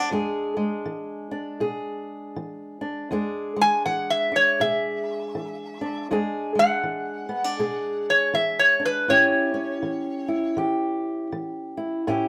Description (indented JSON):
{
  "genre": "acoustic country blues, solo or duo",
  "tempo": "80 BPM",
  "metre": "4/4",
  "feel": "swing 60% on 8ths",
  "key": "E mixolydian",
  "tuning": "A4 = 440 Hz",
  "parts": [
    { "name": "metal-body resonator slide guitar", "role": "melody", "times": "0.0-10.6 s", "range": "B4 to G#5", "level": "-22 LUFS", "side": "equal", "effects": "none" },
    { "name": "fingerpicked old ladder-braced acoustic guitar", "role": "accompaniment", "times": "0.0-12.3 s", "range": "E2 to G#4", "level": "-29 LUFS", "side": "equal", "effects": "none" }
  ],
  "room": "moderate studio reverb, RT60 0.7 s",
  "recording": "none",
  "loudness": "-24 LUFS",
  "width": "mono",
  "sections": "0.0-12.3 A section",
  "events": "resonator guitar played with a steel bar solo 0.0-12.3",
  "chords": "0.0 E7; 9.1 A7"
}